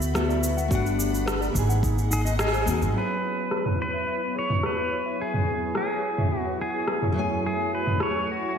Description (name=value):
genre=sunset chillout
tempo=107 BPM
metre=4/4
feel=straight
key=unclear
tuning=A4 = 445 Hz
part: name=nylon-string guitar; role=accompaniment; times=0.0-8.6 s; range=F#2 to G#5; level=-30 LUFS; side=moving between left 5 dB and right 5 dB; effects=auto-pan, digital delay, slapback echo
part: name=soft string machine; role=sustained chords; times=0.0-8.6 s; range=F#3 to B#5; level=-34 LUFS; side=equal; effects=phaser, ensemble chorus
part: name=upright bass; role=bass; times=0.0-2.9 s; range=G1 to D#2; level=-25 LUFS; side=equal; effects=none
part: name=deep house drum kit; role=drums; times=0.0-8.1 s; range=cabasa, rim click, toms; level=-28 LUFS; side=equal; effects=overdrive, low-pass filter on perc, low-pass filter on snare, low-pass filter on toms, low-pass filter on room
part: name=mellow electric guitar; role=arpeggios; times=0.1-8.6 s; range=D#4 to F#5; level=-36 LUFS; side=left 2 dB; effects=low-pass filter, digital delay, slapback echo
part: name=electronic kick drum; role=drums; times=0.7-1.9 s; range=none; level=-29 LUFS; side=equal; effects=overdrive
part: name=pedal steel guitar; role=melody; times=2.1-8.6 s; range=F#4 to C#5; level=-28 LUFS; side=equal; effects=digital delay, slapback echo
room=wet lush hall reverb, RT60 2.1 s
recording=big arena sound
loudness=-23 LUFS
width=side -7 dB against mid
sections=0.0-3.0 A section; 3.0-8.6 B section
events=band accent 2.4; filter sweep on string machine 3.0-8.6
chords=0.0 D6; 0.7 Gmaj7; 1.8 G#7; 3.0 C#m7/F#; 7.2 F#m9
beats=0.15 | 0.71 1.27 1.83 2.39 | 2.95 3.52 4.08 4.64 | 5.20 5.76 6.32 6.88 | 7.44 8.00 8.56